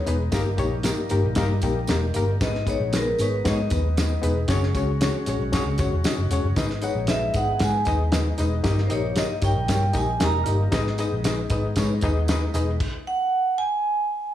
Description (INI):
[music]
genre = uptempo 1960s-style soul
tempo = 115 BPM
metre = 4/4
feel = straight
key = G# minor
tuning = A4 = 443 Hz
[part]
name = vibraphone with medium hard mallets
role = melody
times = 0.0-14.3 s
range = A#4 to A#5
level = -26 LUFS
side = right 2 dB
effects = none
[part]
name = bright tonewheel organ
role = sustained chords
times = 0.0-12.8 s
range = G3 to F#4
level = -34 LUFS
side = right 1 dB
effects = fast rotary speaker, overdrive
[part]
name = overdriven reed electric piano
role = accompaniment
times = 0.1-12.7 s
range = G2 to G5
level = -27 LUFS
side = left 4 dB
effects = harmonic tremolo
[part]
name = vintage muted fingered electric bass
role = bass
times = 0.1-12.8 s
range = E1 to G#2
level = -24 LUFS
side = equal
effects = none
[part]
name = cloth-damped thuddy drum kit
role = drums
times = 0.1-12.9 s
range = crash cymbal, hi-hat, kick drum, snare drum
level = -27 LUFS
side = equal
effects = none
[part]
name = tambourine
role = percussion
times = 0.1-12.7 s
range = none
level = -40 LUFS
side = right 6 dB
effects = none
[sound]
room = light reverb, studio reverb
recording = small room ambience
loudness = -21 LUFS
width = side -12 dB against mid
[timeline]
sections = 0.0-6.6 A section; 6.6-14.3 B section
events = reed electric piano fill 1.4-2.4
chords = 0.3 D#/G; 2.4 G#m; 4.5 F#sus2; 6.6 G#m; 8.6 D#/G; 10.7 G#m; 12.8 N.C.